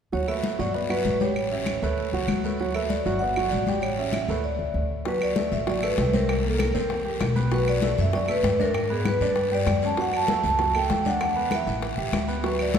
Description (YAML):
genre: Afro-Cuban jazz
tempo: 195 BPM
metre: 4/4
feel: straight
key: D major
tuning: A4 = 438 Hz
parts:
  - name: vibraphone with medium mallets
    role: melody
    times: 0.1-12.8 s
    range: G#4 to A5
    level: -26 LUFS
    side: equal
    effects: none
  - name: warm grand piano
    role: accompaniment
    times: 0.1-12.8 s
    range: F#3 to G5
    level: -30 LUFS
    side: right 4 dB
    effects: none
  - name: upright bass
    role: bass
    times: 0.1-12.8 s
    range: G1 to G#2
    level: -28 LUFS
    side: equal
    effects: none
  - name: congas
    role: percussion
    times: 0.1-12.8 s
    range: none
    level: -30 LUFS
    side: left 4 dB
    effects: none
  - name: guiro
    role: percussion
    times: 0.1-12.8 s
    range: none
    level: -38 LUFS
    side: left 4 dB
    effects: none
  - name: claves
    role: percussion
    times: 0.3-12.7 s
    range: none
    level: -39 LUFS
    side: right 4 dB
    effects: none
  - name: bongos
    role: percussion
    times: 5.1-12.8 s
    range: none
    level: -35 LUFS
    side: left 3 dB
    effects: none
room: wet church reverb, RT60 2.9 s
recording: recorded in a church or concert hall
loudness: -22 LUFS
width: side -8 dB against mid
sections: 0.1-5.1 A section; 5.1-12.8 B section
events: none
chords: 0.1 Gmaj7; 1.4 A7; 2.0 D6; 3.2 Gmaj7; 3.8 A7; 4.4 N.C.; 5.1 D6; 6.3 C7; 7.5 Bm7; 8.7 G#dim; 9.4 G5; 10.0 F#m7; 11.2 E5; 11.8 A7